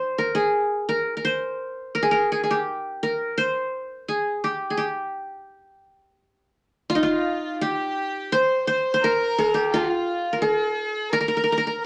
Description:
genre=Arabic maqam ensemble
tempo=85 BPM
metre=3/4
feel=straight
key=unclear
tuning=A4 = 440 Hz
part: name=qanun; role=melody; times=0.0-11.8 s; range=Eb4 to D5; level=-25 LUFS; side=equal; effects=none
part: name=warm studio violin section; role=second line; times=6.9-11.9 s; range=F4 to C5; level=-28 LUFS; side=equal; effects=none
room=wet studio reverb, RT60 0.6 s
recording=none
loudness=-24 LUFS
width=mono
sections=0.0-6.9 A section; 6.9-11.9 B section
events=none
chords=none

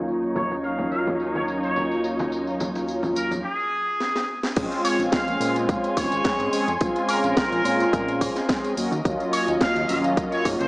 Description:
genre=nu-disco, nu disco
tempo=107 BPM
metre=4/4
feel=swing 54% on 16ths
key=Bb minor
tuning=A4 = 440 Hz
part: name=mellow synth brass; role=accompaniment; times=0.0-10.7 s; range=Gb3 to Ab4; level=-24 LUFS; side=equal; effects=chorus, sidechain pumping
part: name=muted studio string section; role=sustained chords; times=0.0-10.7 s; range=Gb3 to C6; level=-31 LUFS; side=equal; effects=vintage 12-bit sampler grit, sidechain pumping
part: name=chorused synth bass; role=bass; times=0.0-10.7 s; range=Eb1 to Bb2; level=-34 LUFS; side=equal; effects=tube saturation, sidechain pumping
part: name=house drum kit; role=drums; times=0.1-10.7 s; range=crash cymbal, hi-hat, snare drum, tambourine, woodblock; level=-29 LUFS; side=equal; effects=overdrive, low-pass filter on cymbals, low-pass filter on perc, low-pass filter on snare, low-pass filter on hats, low-pass filter on room
part: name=cabasa and congas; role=percussion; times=0.1-3.4 s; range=none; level=-32 LUFS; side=equal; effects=none
part: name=muted trumpet section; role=melody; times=0.4-10.7 s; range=Ab4 to F5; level=-27 LUFS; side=equal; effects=tape echo
part: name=electronic kick drum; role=drums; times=4.6-10.6 s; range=none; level=-25 LUFS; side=equal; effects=overdrive
room=moderate lush hall reverb, RT60 2.1 s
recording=dry, gritty hardware recording, low-pass filter, small speaker sound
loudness=-21 LUFS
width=side -24 dB against mid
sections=0.0-4.6 A section; 4.6-10.7 B section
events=filter sweep on drum 0.0-4.6; filter sweep 0.0-4.6; drum fill 4.0-4.6; drop 4.6-10.7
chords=0.0 Ebm7; 4.3 N.C.; 4.6 Bbm9; 8.8 Ebm7

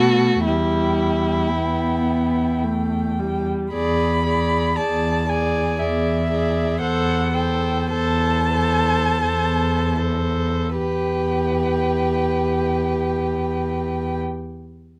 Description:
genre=classical, slow romantic movement for string quartet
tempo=36-59 BPM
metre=3/4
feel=rubato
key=E minor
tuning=A4 = 440 Hz
part: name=muted violin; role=melody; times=0.0-14.2 s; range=E5 to B5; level=-28 LUFS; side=equal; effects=none
part: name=muted violin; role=second line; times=0.0-14.2 s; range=E4 to D5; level=-28 LUFS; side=equal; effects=none
part: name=muted viola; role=accompaniment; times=0.0-14.2 s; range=G3 to A4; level=-27 LUFS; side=equal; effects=none
part: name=muted cello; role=bass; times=0.0-14.2 s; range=E2 to B2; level=-25 LUFS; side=equal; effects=none
room=light reverb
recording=close, detailed microphones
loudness=-21 LUFS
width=mono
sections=0.0-3.7 A section; 3.7-10.8 B section; 10.8-15.0 C section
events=slowing down 2.1-10.8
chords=0.5 Em; 3.7 E7; 6.8 Am/E; 10.8 Em

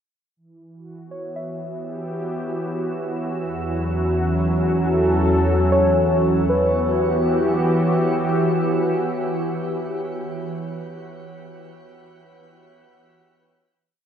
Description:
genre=ambient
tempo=78 BPM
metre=4/4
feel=straight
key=E dorian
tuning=A4 = 440 Hz
part: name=warm analog pad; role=sustained chords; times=0.4-10.3 s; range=E2 to A4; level=-21 LUFS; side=equal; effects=lush chorus, shimmer reverb
part: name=organ-like drone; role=drone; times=2.5-10.4 s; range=E3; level=-27 LUFS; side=right 2 dB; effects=ensemble chorus, built-in reverb
part: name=muted felt-like synth keys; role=arpeggios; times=1.1-12.1 s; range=B4 to E5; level=-26 LUFS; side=left 1 dB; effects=chorus, tape echo, shimmer reverb
room=wet cathedral reverb, RT60 4.8 s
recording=none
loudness=-19 LUFS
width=side -8 dB against mid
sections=0.3-6.5 A section; 6.5-9.6 final chord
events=fade-in on analog synth pad 0.3-6.5; fade-in on synth keys 0.3-6.5; fade-in on synth drone 0.3-6.5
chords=0.3 Emadd9; 3.4 F#m7/E; 6.5 Emadd9

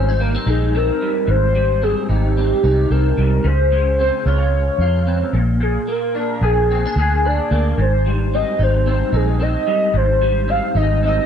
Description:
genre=indie pop, bedroom pop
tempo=111 BPM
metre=4/4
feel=swing 55% on 16ths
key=Ab major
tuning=A4 = 440 Hz
part: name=warbly nostalgic lead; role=melody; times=0.0-11.3 s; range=G4 to F5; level=-20 LUFS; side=equal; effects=wide subtle chorus, slapback echo
part: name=electric guitar through a small old amp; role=accompaniment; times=0.0-11.3 s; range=Ab2 to Ab4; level=-22 LUFS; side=left 1 dB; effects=ensemble chorus, warbly pitch drift
part: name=vintage muted fingered electric bass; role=bass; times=0.0-11.2 s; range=Ab1 to F2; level=-17 LUFS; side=equal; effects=none
room=light reverb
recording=nothing above 10.6 kHz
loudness=-15 LUFS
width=side -8 dB against mid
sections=0.0-11.3 A section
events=none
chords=0.0 Abmaj7; 3.4 Dbmaj7; 5.3 Bb7; 7.8 Abmaj7

